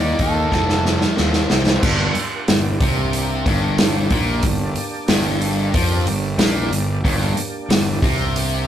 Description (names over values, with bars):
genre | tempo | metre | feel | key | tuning
blues rock power trio and southern rock | 92 BPM | 4/4 | straight | G minor | A4 = 442 Hz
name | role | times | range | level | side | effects
mellow harmonica | melody | 0.0-1.1 s | A4 to D5 | -23 LUFS | right 2 dB | overdrive
distorted electric guitar | riff | 0.0-8.7 s | F2 to Eb4 | -23 LUFS | equal | overdrive
fuzz fingered electric bass | bass | 0.0-8.6 s | F1 to F2 | -22 LUFS | equal | overdrive
vintage drum kit | drums | 0.2-8.5 s | crash cymbal, hi-hat, kick drum, snare drum | -19 LUFS | equal | none
overdriven tonewheel organ | sustained chords | 1.5-8.7 s | G3 to D5 | -29 LUFS | right 3 dB | slow rotary speaker, chorus vibrato
room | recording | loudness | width
moderate studio reverb, RT60 0.6 s | rough rehearsal-room recording, tube saturation | -16 LUFS | side -10 dB against mid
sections
0.0-1.8 A section; 1.8-8.7 B section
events
drum fill 0.5-1.8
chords
0.0 Eb5; 0.5 F; 1.8 Gm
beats
0.52 1.17 | 1.83 2.48 3.13 3.78 | 4.43 5.08 5.74 6.39 | 7.04 7.69 8.35